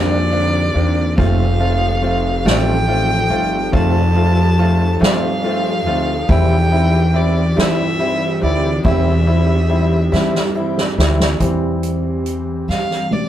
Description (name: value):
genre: six-eight pop ballad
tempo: 47 BPM (dotted quarters)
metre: 6/8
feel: straight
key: unclear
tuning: A4 = 440 Hz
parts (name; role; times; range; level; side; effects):
- rich violin; melody; 0.0-13.3 s; D5 to A5; -22 LUFS; right 1 dB; none
- clear concert grand piano; accompaniment; 0.0-12.6 s; E3 to F4; -21 LUFS; equal; none
- airy breathy pad; sustained chords; 0.0-13.3 s; D3 to A4; -25 LUFS; equal; chorus
- picked steel-string acoustic guitar; arpeggios; 0.0-11.4 s; D3 to Bb4; -29 LUFS; right 3 dB; none
- upright bass; bass; 0.0-13.3 s; F1 to G2; -17 LUFS; equal; none
- soft-mallet drum kit; drums; 0.3-13.3 s; hi-hat, kick drum, ride cymbal, snare drum, toms; -21 LUFS; equal; none
room: moderate studio reverb, RT60 0.6 s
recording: rough rehearsal-room recording, tube saturation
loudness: -14 LUFS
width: side -11 dB against mid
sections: 0.0-11.4 A section; 11.4-13.3 B section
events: drum fill 10.1-11.4, 12.7-13.3; grand piano solo 11.4-13.3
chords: 0.0 Bbadd9; 1.2 F; 6.3 C; 11.4 C/E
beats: | 1.18 2.46 | 3.73 5.01 | 6.29 7.57 | 8.85 10.12 | 11.40 12.68